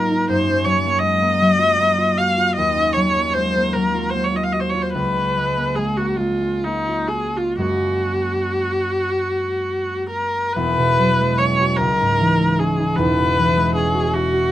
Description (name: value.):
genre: classical, impressionist duo for viola and harp.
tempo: 40-55 BPM (dotted quarters).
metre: 6/8.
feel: rubato.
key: Gb lydian, E lydian from 10.6 s.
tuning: A4 = 445 Hz.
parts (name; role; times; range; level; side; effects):
rich viola; melody; 0.0-14.5 s; Eb4 to F5; -19 LUFS; equal; none.
concert harp; accompaniment; 0.0-14.5 s; E1 to Gb4; -20 LUFS; equal; none.
room: light reverb.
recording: close, detailed microphones.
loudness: -16 LUFS.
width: side -13 dB against mid.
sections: 0.0-10.6 A section; 10.6-14.5 B section.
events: none.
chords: 0.3 Gbmaj7; 2.6 Ebm9; 5.0 Db6; 7.6 Gbadd9; 10.6 E69; 11.8 C#madd9; 13.0 E69.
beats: | 0.30 1.40 | 2.57 3.74 | 4.95 6.20 | 7.62 9.12 | 10.57 11.81 | 13.00 14.16.